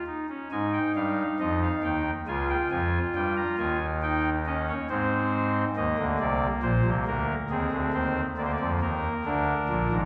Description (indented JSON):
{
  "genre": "classical, baroque-style 3-part fugue for pipe organ",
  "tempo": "69 BPM",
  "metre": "3/4",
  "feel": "straight",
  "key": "Ab major",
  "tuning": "A4 = 440 Hz",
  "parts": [
    { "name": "pipe organ, soft reed", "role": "solo", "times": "0.0-10.1 s", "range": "Ab1 to Bb5", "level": "-27 LUFS", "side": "equal", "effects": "none" }
  ],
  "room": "wet recital hall reverb, RT60 1.6 s",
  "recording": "heard from further back in the room",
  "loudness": "-27 LUFS",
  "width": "mono",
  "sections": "0.5-10.1 A section",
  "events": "none",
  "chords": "0.0 N.C.; 0.5 Ab5; 2.3 Db; 3.1 Eb7; 4.9 Ab; 5.8 Eb5; 7.5 Ab; 8.4 Bb7/D"
}